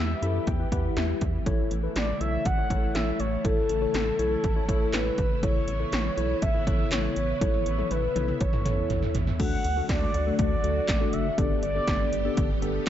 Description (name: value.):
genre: synth-pop.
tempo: 121 BPM.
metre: 4/4.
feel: straight.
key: unclear.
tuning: A4 = 440 Hz.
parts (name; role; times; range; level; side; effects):
mellow horn-like synth lead; melody; 0.0-12.6 s; A4 to F#5; -30 LUFS; equal; chorus, tape echo.
mellow tine electric piano; accompaniment; 0.0-12.9 s; A3 to B5; -32 LUFS; left 4 dB; phaser.
string machine, full ensemble; sustained chords; 0.0-12.9 s; C#3 to G4; -34 LUFS; equal; ensemble chorus.
rubbery square bass; bass; 0.0-12.9 s; F#1 to F#2; -30 LUFS; equal; none.
80s electronic pad drums; drums; 0.2-12.9 s; crash cymbal, handclaps, hi-hat, kick drum, snare drum, toms; -28 LUFS; equal; gated reverb on snare and toms.
room: light reverb, digital ambience.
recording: dark, warm production, nothing above 7.8 kHz.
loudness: -24 LUFS.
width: side -11 dB against mid.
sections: 0.0-9.4 A section; 9.4-12.9 B section.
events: tine electric piano fill 0.0-1.5; drum fill 7.4-9.4.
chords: 0.0 Em; 1.5 A; 9.4 D; 11.4 Gadd9.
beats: 0.47 0.97 | 1.46 1.96 2.46 2.95 | 3.45 3.94 4.44 4.93 | 5.43 5.93 6.42 6.92 | 7.41 7.91 8.40 8.90 | 9.40 9.89 10.39 10.88 | 11.38 11.88 12.37 12.87.